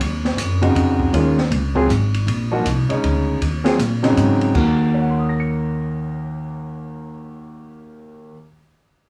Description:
modal jazz; 158 BPM; 3/4; swing 64% on 8ths; Eb dorian; A4 = 436 Hz
upright bass; bass; 0.0-8.3 s; Ab1 to Bb2; -24 LUFS; equal
open jazz drum kit; drums; 0.0-4.7 s; crash cymbal, hi-hat, kick drum, ride cymbal, snare drum; -28 LUFS; equal
warm concert grand piano; accompaniment; 0.6-8.5 s; Eb2 to Db7; -22 LUFS; equal
light reverb; small room ambience; -19 LUFS; mono
0.0-4.5 A section; 4.5-6.8 B section
0.0 Eb9sus4; 4.5 Ebm

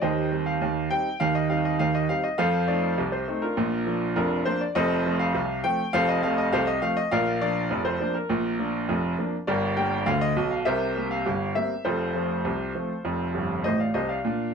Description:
ragtime piano; 101 BPM; 2/4; straight; A4 = 439 Hz
clear upright piano; solo; 0.0-14.5 s; F1 to G5; -23 LUFS; right 1 dB
moderate small room reverb, RT60 0.5 s; dark, warm production; -23 LUFS; side -6 dB against mid
0.0-14.2 A section
upright piano fill 13.3-14.2
0.0 Cm/Eb; 2.4 F7; 3.6 Bb; 4.8 F; 7.1 Bb; 9.5 Gm; 10.7 C5; 11.9 F

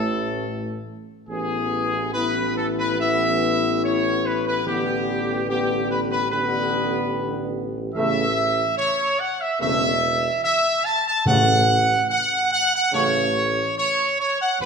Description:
classical; 72 BPM; 4/4; straight; A4 = 440 Hz
bright trumpet section; melody; 0.0-14.7 s; G4 to A5; -21 LUFS; equal
dark French horn section; sustained chords; 0.0-14.7 s; A3 to A4; -29 LUFS; left 7 dB
mellow trombone section; sustained chords; 0.0-14.7 s; A2 to B3; -29 LUFS; right 2 dB
mellow tuba; bass; 0.0-14.7 s; E1 to A1; -27 LUFS; right 2 dB
timpani; percussion; 11.3-14.7 s; A2; -24 LUFS; left 1 dB
wet recital hall reverb, RT60 1.6 s; minimal, uncompressed stereo recording; -19 LUFS; side -6 dB against mid
0.0-14.7 A section
0.0 N.C.; 1.3 E/A; 4.7 G/A; 7.9 Aadd9; 11.3 F#m/A

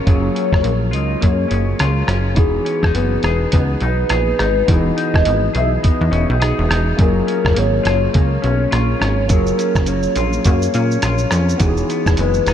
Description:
indie pop, bedroom pop; 104 BPM; 4/4; swing 60% on 16ths; F# major; A4 = 440 Hz
soft octave-layered synth lead; melody; 0.0-12.5 s; G#4 to E5; -21 LUFS; left 2 dB; phaser, wide subtle chorus, diffuse ambient delay
barky tine electric piano; accompaniment; 0.0-12.5 s; A#3 to G#4; -26 LUFS; right 4 dB; cassette tape
semi-hollow electric guitar; accompaniment; 0.0-12.5 s; E3 to G#4; -22 LUFS; left 5 dB; lush chorus, vibrato effect
plucky analog bass; bass; 0.1-12.5 s; E1 to A#2; -18 LUFS; equal
lo-fi sampler-style drum kit; drums; 0.1-12.5 s; hi-hat, kick drum, rim click, shaker; -19 LUFS; equal
light reverb; -14 LUFS; side -10 dB against mid
0.0-12.5 A section
0.0 F#maj7; 2.4 Emaj7; 7.0 F#maj7; 11.6 Emaj7

